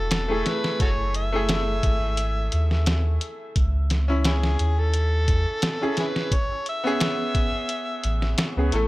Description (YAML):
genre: trip hop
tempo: 87 BPM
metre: 4/4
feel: straight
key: F# dorian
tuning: A4 = 443 Hz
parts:
  - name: overdriven harmonica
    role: melody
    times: 0.0-8.7 s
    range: C#4 to E5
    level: -29 LUFS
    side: equal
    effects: dub echo
  - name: bright upright piano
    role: accompaniment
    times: 0.0-8.9 s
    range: A3 to A4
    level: -28 LUFS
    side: equal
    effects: harmonic tremolo, low-pass filter
  - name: soft dub sub bass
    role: bass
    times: 0.0-8.9 s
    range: E1 to E2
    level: -23 LUFS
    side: equal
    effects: tube saturation
  - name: trip hop sampler-style drum kit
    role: drums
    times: 0.1-8.9 s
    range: hi-hat, kick drum, snare drum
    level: -25 LUFS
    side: equal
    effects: small room reverb
room: small room reverb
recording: none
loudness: -21 LUFS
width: side -18 dB against mid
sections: 0.0-8.9 A section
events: none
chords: 0.0 F#m7; 3.6 C#m; 6.3 Amaj7